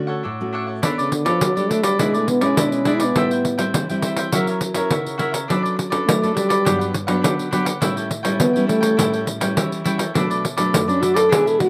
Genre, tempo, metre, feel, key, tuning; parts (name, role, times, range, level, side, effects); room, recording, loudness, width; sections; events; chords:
samba and choro; 103 BPM; 4/4; straight; A4 = 440 Hz
mellow French horn; melody; 0.0-11.7 s; C#3 to A4; -21 LUFS; equal
nylon-string guitar; accompaniment; 0.0-11.7 s; F#2 to C#5; -26 LUFS; equal
cavaquinho; accompaniment; 0.1-11.6 s; D4 to G5; -27 LUFS; equal; slapback echo
pandeiro; percussion; 0.8-11.7 s; -25 LUFS; equal
little or no reverb; recorded outdoors, with no room sound; -20 LUFS; mono
0.8-11.7 A section
break 0.0-0.8; French horn solo 0.8-11.7
0.0 Dmaj7; 0.8 Bm9; 2.0 E7/B; 3.2 Am7; 4.3 F#7; 5.5 Bm9/F#; 6.7 Gmaj7; 7.8 A7; 10.2 Bm7